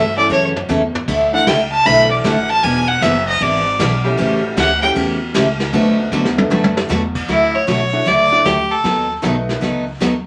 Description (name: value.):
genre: country, western swing.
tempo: 154 BPM.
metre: 4/4.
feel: swing 65% on 8ths.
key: D major.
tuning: A4 = 439 Hz.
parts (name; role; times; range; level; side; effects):
clear fiddle; melody; 0.0-4.9, 7.3-9.1 s; E4 to B5; -18 LUFS; equal; none.
picked steel-string acoustic guitar; accompaniment; 0.0-10.1 s; C#3 to B4; -21 LUFS; equal; none.
upright bass; bass; 0.0-10.3 s; E1 to G2; -25 LUFS; equal; none.
tack piano; accompaniment; 0.2-9.8 s; E3 to A4; -24 LUFS; equal; none.
vintage brush drum kit; drums; 0.3-10.3 s; brushed snare drum, crash cymbal, hi-hat, kick drum, ride cymbal, snare drum, toms; -24 LUFS; equal; none.
room: wet club reverb, RT60 0.5 s.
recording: none.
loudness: -16 LUFS.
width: mono.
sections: 0.0-7.3 A section; 7.3-10.3 B section.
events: fiddle solo 0.0-7.3; drum fill 0.3-1.1, 6.1-6.9.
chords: 0.0 A; 1.1 Dsus2; 2.6 E7; 4.2 A7; 5.7 D6; 7.3 Dadd9; 8.8 B7.